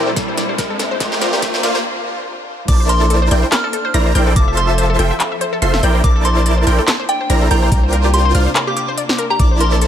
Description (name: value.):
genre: future bass.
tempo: 143 BPM.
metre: 4/4.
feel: swing 56% on 16ths, half-time.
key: Bb lydian.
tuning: A4 = 440 Hz.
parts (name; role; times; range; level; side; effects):
warm studio string section; sustained chords; 0.0-9.9 s; Bb2 to E5; -26 LUFS; left 1 dB; sidechain pumping.
wide unison pluck; arpeggios; 0.0-9.9 s; G4 to F5; -24 LUFS; left 3 dB; sidechain pumping, digital delay.
dense compressed supersaw; riff; 0.0-9.9 s; E4 to C6; -20 LUFS; right 1 dB; sidechain pumping, digital delay.
riser; sound effects; 0.0-1.8 s; none; -25 LUFS; equal; none.
electronic kick drum; drums; 0.2-9.5 s; none; -14 LUFS; equal; none.
pop drum kit; drums; 0.2-9.9 s; crash cymbal, handclaps, hi-hat, snare drum; -21 LUFS; equal; high-pass filter on snare, high-pass filter on hats, high-pass filter on cymbals.
soft synth bell; melody; 2.7-9.9 s; G5 to F6; -21 LUFS; equal; chorus, phaser, sidechain pumping, dub echo.
wide unison pluck; arpeggios; 2.7-9.9 s; F6 to C7; -30 LUFS; right 1 dB; none.
long sustained 808-style bass; bass; 2.7-9.9 s; F1 to C2; -15 LUFS; equal; sidechain pumping.
room: light reverb, digital ambience.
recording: high-pass filter.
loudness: -13 LUFS.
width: side -10 dB against mid.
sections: 0.0-2.7 A section; 2.7-9.9 B section.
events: build-up 0.0-2.7; drum fill 0.0-1.8; riser 0.0-1.8; break 1.8-2.7; drop 2.7-9.9.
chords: 0.0 Bbmaj9#11; 1.0 C9sus4; 2.7 Bbmaj9#11; 4.4 Fmaj7; 5.8 Bbmaj9#11; 7.7 C9sus4.